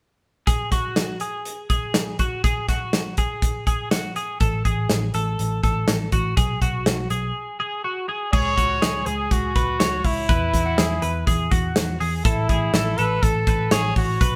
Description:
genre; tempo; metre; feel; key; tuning
jangly indie pop; 122 BPM; 4/4; straight; unclear; A4 = 440 Hz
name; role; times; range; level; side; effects
twelve-string electric guitar; arpeggios; 0.5-14.4 s; F#4 to C#5; -29 LUFS; equal; vibrato effect
modern studio drum kit; drums; 0.5-14.3 s; crash cymbal, hi-hat, kick drum, snare drum; -24 LUFS; equal; none
vintage muted picked electric bass; bass; 4.4-14.4 s; A1 to E2; -27 LUFS; equal; none
clear trumpet; melody; 8.3-14.4 s; E4 to C#5; -26 LUFS; equal; none
room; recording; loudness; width
light reverb; band playing live in one room; -22 LUFS; mono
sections
0.5-8.3 A section; 8.3-14.4 B section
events
break 7.4-8.3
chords
0.5 F#sus2; 4.4 F#madd9/A; 6.4 B5; 8.3 C#5; 10.3 Eadd9; 12.2 Aadd9

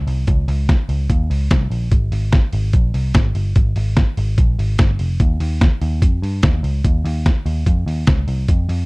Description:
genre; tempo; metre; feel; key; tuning
jangly indie pop; 146 BPM; 4/4; straight; Ab major; A4 = 440 Hz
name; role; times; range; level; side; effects
vintage muted picked electric bass; bass; 0.0-8.9 s; F1 to G2; -18 LUFS; equal; none
lo-fi sampler-style drum kit; drums; 0.1-8.8 s; hi-hat, kick drum, snare drum; -15 LUFS; equal; overdrive
room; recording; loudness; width
little or no reverb; dry, close 1970s-style studio recording; -15 LUFS; side -29 dB against mid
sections
0.0-8.9 A section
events
none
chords
none

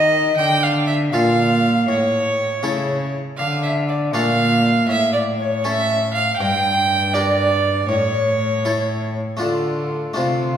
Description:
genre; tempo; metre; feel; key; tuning
classical, renaissance-style consort dance; 80 BPM (dotted quarters); 6/8; straight; unclear; A4 = 440 Hz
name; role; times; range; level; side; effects
mellow hollow tenor recorder; melody; 0.0-10.6 s; A4 to G5; -24 LUFS; left 2 dB; none
rich violin; second line; 0.0-10.6 s; F4 to G5; -20 LUFS; right 2 dB; none
harpsichord; accompaniment; 0.0-10.6 s; G2 to Bb4; -25 LUFS; left 2 dB; none
rich cello; bass; 0.0-10.6 s; G2 to Eb3; -22 LUFS; right 1 dB; none
room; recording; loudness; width
wet recital hall reverb, RT60 1.8 s; recorded in a church or concert hall; -16 LUFS; side -9 dB against mid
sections
0.0-9.4 A section; 9.4-10.6 B section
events
none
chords
0.4 Dm; 1.9 A; 3.4 Dm; 4.9 A; 6.4 Gm; 7.9 A; 9.4 Dm

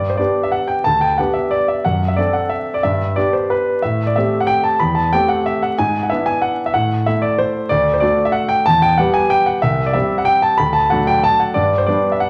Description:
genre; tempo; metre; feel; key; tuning
classical, piano waltz; 185 BPM; 3/4; uneven beats, rubato; G major; A4 = 440 Hz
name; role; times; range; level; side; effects
clear concert grand piano; solo; 0.0-12.3 s; C2 to B5; -16 LUFS; equal; none
room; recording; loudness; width
wet large studio reverb, RT60 1.4 s; vinyl crackle, nothing above 10.6 kHz; -17 LUFS; mono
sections
0.0-12.3 A section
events
none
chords
0.0 G; 1.9 D7/F#; 2.8 G; 3.8 Am7; 5.8 E7/G#; 6.7 Am; 7.7 D; 8.7 Em; 9.6 C5; 10.6 D; 11.6 G

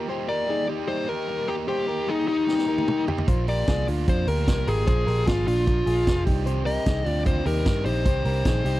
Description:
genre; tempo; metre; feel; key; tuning
jangly indie pop; 151 BPM; 4/4; straight; unclear; A4 = 444 Hz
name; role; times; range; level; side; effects
overdriven electric guitar; accompaniment; 0.0-8.8 s; Bb2 to G4; -32 LUFS; right 7 dB; none
direct-recorded clean electric guitar; arpeggios; 0.0-8.8 s; D4 to C5; -30 LUFS; left 3 dB; none
dark smooth lead guitar; melody; 0.3-8.8 s; Eb4 to Eb5; -26 LUFS; left 2 dB; overdrive, tape echo
vintage drum kit; drums; 2.5-8.7 s; hi-hat, kick drum, snare drum, toms; -25 LUFS; right 1 dB; none
vintage muted picked electric bass; bass; 3.3-8.8 s; F1 to G2; -25 LUFS; right 1 dB; none
room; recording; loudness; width
light reverb; dry, close 1970s-style studio recording; -21 LUFS; side -16 dB against mid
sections
0.0-8.8 A section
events
drum fill 2.5-3.3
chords
0.0 Eb/G; 3.3 Bb; 6.3 Cmadd9

